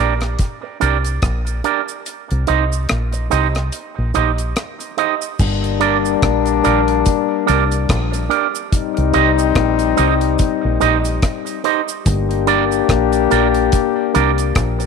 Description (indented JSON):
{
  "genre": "roots reggae",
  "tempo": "72 BPM",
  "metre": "4/4",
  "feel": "swing 58% on 16ths",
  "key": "G minor",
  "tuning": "A4 = 441 Hz",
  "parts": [
    { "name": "electric guitar with an envelope filter", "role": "accompaniment", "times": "0.0-14.8 s", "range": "D4 to Eb5", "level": "-20 LUFS", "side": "right 15 dB", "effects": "spring reverb, dub echo" },
    { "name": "deep dub fingered electric bass", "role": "bass", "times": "0.0-14.9 s", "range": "G1 to C2", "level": "-19 LUFS", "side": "equal", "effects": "none" },
    { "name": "deep reggae drum kit", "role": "drums", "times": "0.2-14.9 s", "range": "crash cymbal, hi-hat, kick drum, rim click", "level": "-20 LUFS", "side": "equal", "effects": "none" },
    { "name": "cabasa", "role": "percussion", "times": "0.4-14.9 s", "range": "none", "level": "-31 LUFS", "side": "right 21 dB", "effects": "none" },
    { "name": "warm trombone section", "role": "second line", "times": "5.4-14.9 s", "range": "G3 to G4", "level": "-18 LUFS", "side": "left 13 dB", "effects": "dub echo" }
  ],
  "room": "light reverb",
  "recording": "1960s-style stereo with parts hard left and right",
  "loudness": "-14 LUFS",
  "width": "side -5 dB against mid",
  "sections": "0.0-5.4 A section; 5.4-14.9 B section",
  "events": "kick muted 2.1-5.4",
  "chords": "0.0 Gm; 2.1 Cm; 5.4 Gm; 8.7 Cm; 12.1 Gm"
}